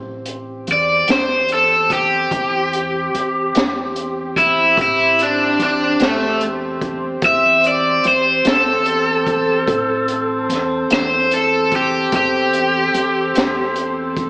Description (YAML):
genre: slow blues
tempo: 49 BPM (dotted quarters)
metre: 12/8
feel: straight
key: A minor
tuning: A4 = 440 Hz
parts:
  - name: mellow horn section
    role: sustained chords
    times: 0.0-14.3 s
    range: C4 to C5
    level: -23 LUFS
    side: equal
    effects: none
  - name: upright bass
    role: bass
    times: 0.0-14.3 s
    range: A1 to E2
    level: -31 LUFS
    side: equal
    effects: none
  - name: crunchy breakbeat drum kit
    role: drums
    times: 0.3-14.3 s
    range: hi-hat, kick drum, snare drum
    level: -21 LUFS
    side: equal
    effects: none
  - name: cranked stack guitar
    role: melody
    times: 0.7-13.7 s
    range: A3 to E5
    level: -15 LUFS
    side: equal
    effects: overdrive
room: wet lush hall reverb, RT60 1.9 s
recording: big arena sound, AM radio sound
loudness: -14 LUFS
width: side -25 dB against mid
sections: 0.0-14.3 A section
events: overdriven electric guitar solo 0.0-14.3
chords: 0.0 Am7